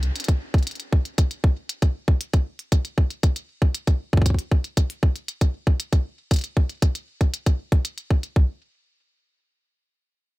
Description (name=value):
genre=IDM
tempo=117 BPM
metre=4/4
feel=straight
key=none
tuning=none
part: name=electronic hi-hat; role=drums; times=0.0-8.3 s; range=none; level=-32 LUFS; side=equal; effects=none
part: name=electronic kick drum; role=drums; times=0.3-8.5 s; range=none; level=-18 LUFS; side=equal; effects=none
room=little or no reverb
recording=none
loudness=-20 LUFS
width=side -20 dB against mid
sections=0.0-8.4 A section; 8.4-10.4 B section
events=none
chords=none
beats=| 0.16 0.67 1.18 1.69 | 2.21 2.72 3.23 3.75 | 4.26 4.77 5.28 5.80 | 6.31 6.82 7.33 7.85 | 8.36